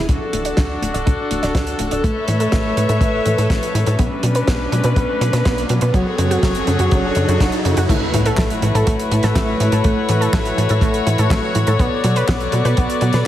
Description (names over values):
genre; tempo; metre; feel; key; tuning
italo disco; 123 BPM; 4/4; straight; A major; A4 = 439 Hz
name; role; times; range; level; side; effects
warm chamber string section; sustained chords; 0.0-13.3 s; F#3 to E5; -20 LUFS; left 2 dB; none
wide unison pluck; arpeggios; 0.0-13.3 s; C#3 to D5; -23 LUFS; right 2 dB; tape echo
tight sequencer bass; bass; 0.0-13.2 s; D1 to B2; -20 LUFS; equal; tube saturation
damped 70s drum kit; drums; 0.1-13.2 s; crash cymbal, handclaps, hi-hat, snare drum; -26 LUFS; right 1 dB; high-pass filter on hats, studio reverb, high-pass filter on cymbals, high-pass filter on snare, high-pass filter on room
kick drum; drums; 0.1-12.9 s; none; -19 LUFS; equal; studio reverb
riser and impact; sound effects; 1.8-9.8 s; none; -27 LUFS; right 1 dB; none
room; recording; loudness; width
moderate lush hall reverb, RT60 2.1 s; heavily compressed radio sound; -15 LUFS; side -12 dB against mid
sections
0.1-7.9 A section; 7.9-13.3 B section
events
filter sweep on synth arpeggio sound 0.1-7.9; riser 1.8-7.9; impact 7.9-9.8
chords
0.1 D; 2.0 Aadd9; 4.0 Bmadd9; 5.9 F#madd9; 7.9 A6; 11.8 Bm7